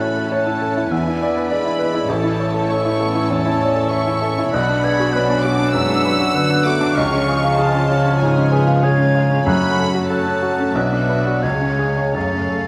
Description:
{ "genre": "classical, romantic movement for piano and orchestra", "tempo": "83-102 BPM", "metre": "4/4", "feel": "rubato", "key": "unclear", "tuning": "A4 = 440 Hz", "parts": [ { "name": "clear baby grand piano", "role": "melody", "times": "0.0-12.7 s", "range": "A1 to D5", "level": "-22 LUFS", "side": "equal", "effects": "none" }, { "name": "dark studio violin section", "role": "melody", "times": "0.0-12.7 s", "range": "E5 to E6", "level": "-28 LUFS", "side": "equal", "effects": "none" }, { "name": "concert flute", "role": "second line", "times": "0.0-12.7 s", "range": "D6 to A6", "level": "-28 LUFS", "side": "equal", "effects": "none" }, { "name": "mellow clarinet", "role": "second line", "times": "0.0-12.7 s", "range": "B4 to E#5", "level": "-31 LUFS", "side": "equal", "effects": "none" }, { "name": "rich studio violin section", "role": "second line", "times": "0.0-12.7 s", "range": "C#4 to F#5", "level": "-32 LUFS", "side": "equal", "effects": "none" }, { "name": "mellow bassoon", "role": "accompaniment", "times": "0.0-12.7 s", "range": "C#3 to D4", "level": "-29 LUFS", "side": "equal", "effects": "none" }, { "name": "warm studio viola section", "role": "accompaniment", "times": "0.0-12.7 s", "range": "E#3 to F#4", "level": "-29 LUFS", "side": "equal", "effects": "none" }, { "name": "mellow French horn section", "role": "sustained chords", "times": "0.0-12.7 s", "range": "E3 to D4", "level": "-30 LUFS", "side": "equal", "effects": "none" }, { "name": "dark studio cello section", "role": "bass", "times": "0.0-12.7 s", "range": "E2 to D3", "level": "-25 LUFS", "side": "equal", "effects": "none" }, { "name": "timpani", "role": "percussion", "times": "9.5-12.6 s", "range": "F#2", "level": "-30 LUFS", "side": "equal", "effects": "none" } ], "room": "moderate scoring stage reverb, RT60 2.0 s", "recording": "none", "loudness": "-18 LUFS", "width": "mono", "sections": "0.0-12.7 A section", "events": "timpani fill 12.1-12.7", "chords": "0.0 A; 0.9 E7; 2.1 A; 4.5 Bm; 7.0 C#; 9.5 F#m; 10.8 Bm; 11.4 C#; 12.1 F#m" }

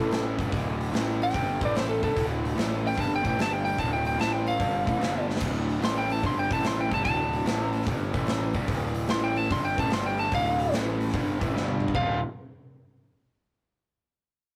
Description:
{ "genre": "blues rock power trio and southern rock", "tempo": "147 BPM", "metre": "4/4", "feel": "swing 67% on 8ths", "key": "D minor", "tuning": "A4 = 444 Hz", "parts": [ { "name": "lightly driven lead guitar", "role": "melody", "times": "0.0-12.2 s", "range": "A4 to C6", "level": "-30 LUFS", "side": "equal", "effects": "none" }, { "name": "raw garage guitar", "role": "riff", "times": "0.0-12.2 s", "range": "D2 to F4", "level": "-34 LUFS", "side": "equal", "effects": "overdrive" }, { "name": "fuzz picked electric bass", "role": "bass", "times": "0.0-12.2 s", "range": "D1 to A1", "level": "-32 LUFS", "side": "equal", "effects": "overdrive" }, { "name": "big rock drum kit", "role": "drums", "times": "0.1-12.1 s", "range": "crash cymbal, hi-hat, kick drum, snare drum, toms", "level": "-33 LUFS", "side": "equal", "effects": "none" } ], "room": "moderate small room reverb, RT60 0.5 s", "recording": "rough rehearsal-room recording, warm saturation", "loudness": "-27 LUFS", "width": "mono", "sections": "0.0-12.0 A section; 12.0-13.6 B section", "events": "drum fill 5.2, 11.5-12.0", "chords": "0.3 D5; 0.9 A5; 1.3 G5; 1.5 A5; 1.9 D5; 2.6 A5; 3.0 D5; 3.4 G5; 3.8 D5; 4.2 A5; 4.6 Dm; 5.0 G5; 5.4 D5; 5.8 A5; 6.2 Gsus4; 6.4 A5; 6.8 D5; 7.5 A5; 7.9 G5; 8.1 A5; 8.5 D5; 9.1 A5; 9.5 D5; 9.9 G5; 10.3 Dm; 10.7 A5; 11.1 D5; 11.5 G5; 12.0 Dm" }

